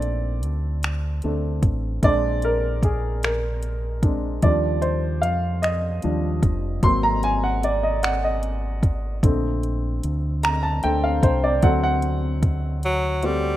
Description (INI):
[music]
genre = slow six-eight R&B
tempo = 50 BPM (dotted quarters)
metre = 6/8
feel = straight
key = unclear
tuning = A4 = 440 Hz
[part]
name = warm baby grand piano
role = accompaniment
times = 0.0-13.6 s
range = D3 to C6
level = -23 LUFS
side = equal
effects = none
[part]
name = deep dub fingered electric bass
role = bass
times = 0.0-13.6 s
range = F1 to F2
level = -24 LUFS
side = equal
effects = none
[part]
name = smooth R&B drum kit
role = drums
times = 0.0-13.4 s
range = finger snaps, hi-hat, kick drum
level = -21 LUFS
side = equal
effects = none
[part]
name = breathy tenor saxophone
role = melody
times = 12.8-13.6 s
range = F#3 to G3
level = -22 LUFS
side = equal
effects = none
[sound]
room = small room reverb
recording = rough home demo mix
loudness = -20 LUFS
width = side -14 dB against mid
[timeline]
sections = 0.0-13.6 A section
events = grand piano solo 0.0-13.6; drum fill 12.8-13.6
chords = 0.0 Bbmaj7; 2.0 Bb7; 4.4 Ebmaj7; 6.8 Ab9; 9.2 Bbmaj7; 11.6 D7